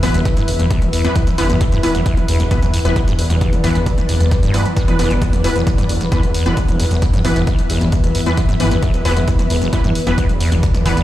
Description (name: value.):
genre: driving peak-time techno.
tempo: 133 BPM.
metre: 4/4.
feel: straight.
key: unclear.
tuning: A4 = 438 Hz.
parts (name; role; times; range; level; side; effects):
acid bass, saw; riff; 0.0-11.0 s; D2 to G3; -20 LUFS; equal; sidechain pumping, tape echo.
rave stab; stabs; 0.0-11.0 s; E3 to B4; -22 LUFS; equal; chorus, built-in reverb, cassette tape, sidechain pumping, tape echo.
detuned saw bass; bass; 0.0-11.0 s; D1 to E2; -20 LUFS; equal; sidechain pumping.
deep dark ambient pad; drone; 0.0-11.0 s; E3 to B3; -26 LUFS; left 1 dB; chorus, built-in reverb, sidechain pumping.
electronic kick drum; drums; 0.0-10.9 s; none; -17 LUFS; equal; none.
punchy analog drum machine; drums; 0.0-11.0 s; hi-hat, toms; -25 LUFS; left 1 dB; sidechain pumping on hats, sidechain pumping on toms.
airy breathy pad; texture; 0.0-11.0 s; E4 to E5; -25 LUFS; left 1 dB; chorus, sidechain pumping.
room: little or no reverb.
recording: played on a big sound system in a bare room, large studio reverb.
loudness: -13 LUFS.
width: side -14 dB against mid.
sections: 0.0-11.0 A section.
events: none.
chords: 0.0 E5.